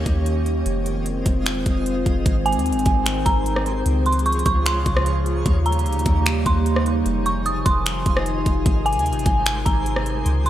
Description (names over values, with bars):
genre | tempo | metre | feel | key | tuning
hip hop, atmospheric cloud-rap | 150 BPM | 4/4 | half-time | Ab major | A4 = 440 Hz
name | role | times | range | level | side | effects
warbly tape-like pad | sustained chords | 0.0-10.5 s | C3 to Ab5 | -25 LUFS | equal | chorus, built-in reverb, sidechain pumping
soft 808-style bass | bass | 0.0-10.5 s | F1 to Eb2 | -23 LUFS | equal | none
twinkling granular texture | texture | 0.0-10.5 s | G3 to Eb5 | -33 LUFS | equal | built-in reverb, wide subtle chorus
trap drum kit | drums | 0.1-10.5 s | finger snaps, hi-hat, kick drum, rim click | -22 LUFS | equal | overdrive
dark detuned synth bell | melody | 2.5-10.5 s | Ab5 to Eb6 | -24 LUFS | right 2 dB | chorus, low-pass filter, digital delay
room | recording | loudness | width
light reverb, digital ambience | bright 1980s-style digital production | -18 LUFS | side -12 dB against mid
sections
0.0-2.3 A section; 2.3-10.5 B section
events
none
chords
0.0 Eb7; 0.7 Fm7; 2.3 Abmaj7; 3.9 Db; 5.5 Eb7; 7.1 Fm7; 8.7 Abmaj7